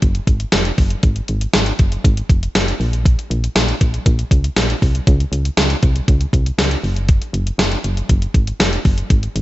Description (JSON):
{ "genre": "1980s-style pop", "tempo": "119 BPM", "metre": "4/4", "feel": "straight", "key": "unclear", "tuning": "A4 = 440 Hz", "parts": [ { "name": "solid FM bass", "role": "bass", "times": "0.0-9.4 s", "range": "F1 to Db2", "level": "-19 LUFS", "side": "equal", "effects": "none" }, { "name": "gated 80s digital drum machine", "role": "drums", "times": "0.0-9.4 s", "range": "hi-hat, kick drum, snare drum, tambourine", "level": "-15 LUFS", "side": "equal", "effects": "gated reverb, gated reverb snare" } ], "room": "little or no reverb", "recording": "nothing above 7.9 kHz", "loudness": "-14 LUFS", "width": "side -16 dB against mid", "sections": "0.0-9.4 A section", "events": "none", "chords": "none" }